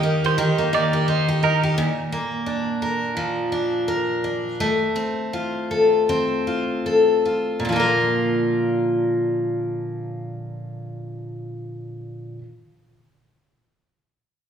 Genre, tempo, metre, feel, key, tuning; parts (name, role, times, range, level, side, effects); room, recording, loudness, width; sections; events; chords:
pop; 74-87 BPM; 4/4; swing 60% on 16ths; Bb major; A4 = 440 Hz
electric slide guitar; melody; 0.0-1.1 s; Bb4; -30 LUFS; right 4 dB
picked steel-string acoustic guitar; accompaniment; 0.0-12.5 s; Bb2 to Bb4; -20 LUFS; left 1 dB
twelve-string electric guitar; arpeggios; 0.3-1.6 s; Bb4 to D5; -25 LUFS; right 7 dB
wet recital hall reverb, RT60 1.7 s; recorded in a church or concert hall; -19 LUFS; side -8 dB against mid
0.0-1.8 A section; 1.8-7.7 B section; 7.7-10.9 C section
slowing down 1.8-7.7
0.0 Eb; 1.8 Bb; 4.6 F/A; 7.7 Bb